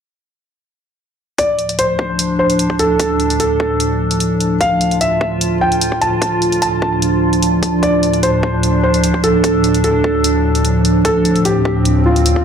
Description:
heavy wobble dubstep; 149 BPM; 4/4; half-time; D minor; A4 = 440 Hz
dark grand piano; melody; 1.4-12.4 s; F4 to A5; -17 LUFS; equal; ping-pong delay
evolving wavetable pad; sustained chords; 1.6-12.4 s; D2 to F4; -16 LUFS; left 1 dB; chorus, built-in reverb, sidechain pumping
electronic hi-hat; drums; 1.4-12.3 s; -22 LUFS; equal; studio reverb
electronic kick drum; drums; 1.4-12.4 s; -23 LUFS; equal; high-pass filter on kick, studio reverb
deep dark ambient pad; texture; 2.6-12.4 s; D4 to A5; -21 LUFS; right 6 dB; chorus, built-in reverb, sidechain pumping
moderate digital room reverb, RT60 0.9 s; dark, warm production; -12 LUFS; side -7 dB against mid
1.4-12.4 A section
1.4 Dm

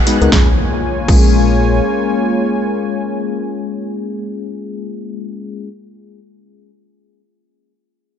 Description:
deep house; free time; Bb phrygian; A4 = 440 Hz
warm analog pad; sustained chords; 0.0-4.9 s; Bb3 to Ab5; -21 LUFS; left 2 dB; chorus, sidechain pumping
soft round pluck; arpeggios; 0.0-1.2 s; Ab4 to Eb5; -29 LUFS; right 3 dB
mellow FM electric piano; stabs; 0.1-5.7 s; Ab3 to Cb5; -18 LUFS; left 3 dB; chorus, sidechain pumping, tape echo
deep house drum kit; drums; 0.1-1.3 s; cabasa, crash cymbal, hi-hat, snare drum; -21 LUFS; equal
organ-like FM bass; bass; 0.2-1.8 s; Bb1 to Db2; -16 LUFS; equal; sidechain pumping
electronic kick drum; drums; 0.3-1.3 s; -13 LUFS; equal
impact; sound effects; 0.5-5.0 s; -24 LUFS; equal
light reverb, digital ambience; nothing above 8.0 kHz; -13 LUFS; side -9 dB against mid
0.3-4.4 A section
0.3 Bbm7

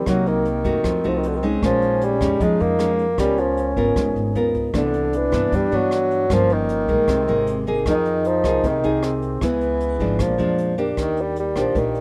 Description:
bossa nova; 154 BPM; 4/4; straight; A4 = 442 Hz
mellow bassoon; melody; 0.0-12.0 s; D3 to Bb3; -24 LUFS; equal
mellow reedy alto flute; second line; 0.0-10.8 s; Bb3 to Eb4; -29 LUFS; equal
nylon-string guitar; accompaniment; 0.0-12.0 s; G2 to Bb4; -25 LUFS; equal
upright bass; bass; 0.0-12.0 s; G1 to G2; -30 LUFS; equal
jazz brush drum kit; drums; 0.1-12.0 s; hi-hat, kick drum, rim click; -31 LUFS; equal
light reverb, studio reverb; rough home demo mix; -20 LUFS; mono
0.0-11.0 A section; 11.0-12.0 B section
0.1 Cm7b5; 0.8 F7b9; 1.6 Bbm7; 3.2 Db13; 4.7 Cmaj9; 6.3 Gm7b5; 7.1 Abadd9; 7.9 Fm7; 9.4 Dbm7; 10.2 Bb7; 11.0 Ebmaj7

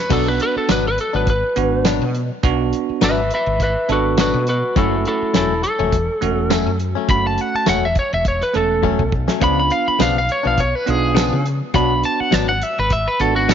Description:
straight-eighth soul blues; 103 BPM; 4/4; swing 54% on 16ths; F# minor; A4 = 440 Hz
lightly driven lead guitar; melody; 0.0-13.5 s; E4 to B5; -19 LUFS; left 1 dB
bell-like tine electric piano; accompaniment; 0.1-13.5 s; A3 to A4; -23 LUFS; right 12 dB
direct-recorded clean electric guitar; stabs; 0.1-13.5 s; F#2 to D4; -23 LUFS; left 12 dB
woody fretless electric bass; bass; 0.1-13.5 s; E1 to C#3; -22 LUFS; equal; transformer saturation, ensemble chorus
damped 70s drum kit; drums; 0.1-13.5 s; crash cymbal, hi-hat, kick drum, snare drum, tambourine; -21 LUFS; right 3 dB
light reverb; 1960s-style stereo with parts hard left and right, nothing above 7.5 kHz; -15 LUFS; side -8 dB against mid
0.0-13.5 A section
lead electric guitar solo 0.0-13.5; drum fill 8.8-9.4
0.1 Bm; 4.8 F#m; 9.4 C#7b9; 11.7 Bm

